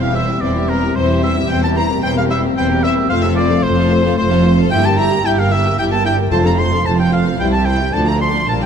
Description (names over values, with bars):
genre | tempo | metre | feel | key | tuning
quick classical-period movement for symphony orchestra | 112 BPM | 3/4 | rubato | F major | A4 = 440 Hz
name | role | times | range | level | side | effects
clear studio violin section | melody | 0.0-8.7 s | Bb4 to C6 | -24 LUFS | left 4 dB | none
clear oboe | second line | 0.0-8.7 s | Bb4 to C6 | -20 LUFS | right 2 dB | none
clear studio violin section | second line | 0.0-8.7 s | D4 to G5 | -25 LUFS | left 2 dB | none
dark studio viola section | accompaniment | 0.0-8.7 s | D3 to G4 | -21 LUFS | right 2 dB | none
mellow French horn section | sustained chords | 0.0-8.7 s | F3 to F4 | -21 LUFS | left 7 dB | none
rich studio cello section | bass | 0.0-8.7 s | C2 to Bb2 | -20 LUFS | right 2 dB | none
warm studio double bass section | bass | 0.0-8.7 s | E1 to D2 | -20 LUFS | right 2 dB | none
timpani | percussion | 6.3-7.1 s | F2 | -25 LUFS | left 1 dB | none
room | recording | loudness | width
moderate concert hall reverb, RT60 2.2 s | none | -13 LUFS | side -7 dB against mid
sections
0.0-8.7 A section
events
none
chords
0.0 C/E; 1.5 C7/E; 3.1 F; 4.7 Edim/G; 6.3 F; 7.4 C; 7.9 Dm